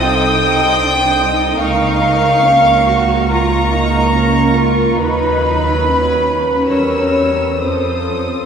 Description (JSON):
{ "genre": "classical, slow romantic movement for string orchestra", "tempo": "59-75 BPM", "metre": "4/4", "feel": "rubato", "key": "Bb minor", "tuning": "A4 = 439 Hz", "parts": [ { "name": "dark symphonic violin section", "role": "melody", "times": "0.0-8.5 s", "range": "B5 to E6", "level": "-21 LUFS", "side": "left 2 dB", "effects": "none" }, { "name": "warm symphonic violin section", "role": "second line", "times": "0.0-8.5 s", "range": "Bb4 to Bb5", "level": "-15 LUFS", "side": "equal", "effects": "none" }, { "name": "warm studio viola section", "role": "accompaniment", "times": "0.0-8.5 s", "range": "F3 to B4", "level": "-19 LUFS", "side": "right 2 dB", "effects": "none" }, { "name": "dark chamber double bass section", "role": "bass", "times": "0.0-8.5 s", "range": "C2 to F2", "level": "-20 LUFS", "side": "right 3 dB", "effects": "none" }, { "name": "dark studio cello section", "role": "bass", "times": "0.0-8.5 s", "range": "C4 to Gb4", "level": "-20 LUFS", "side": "right 1 dB", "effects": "none" } ], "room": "wet cathedral reverb, RT60 5.5 s", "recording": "minimal, uncompressed stereo recording", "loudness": "-11 LUFS", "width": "side -7 dB against mid", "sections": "0.0-8.5 A section", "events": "none", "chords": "0.0 Adim/C; 1.6 Bbm/Db; 5.0 B/D#; 6.7 Edim7; 7.6 F7", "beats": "0.79 | 1.60 2.41 3.31 4.14 | 4.99 5.84 6.70 7.60" }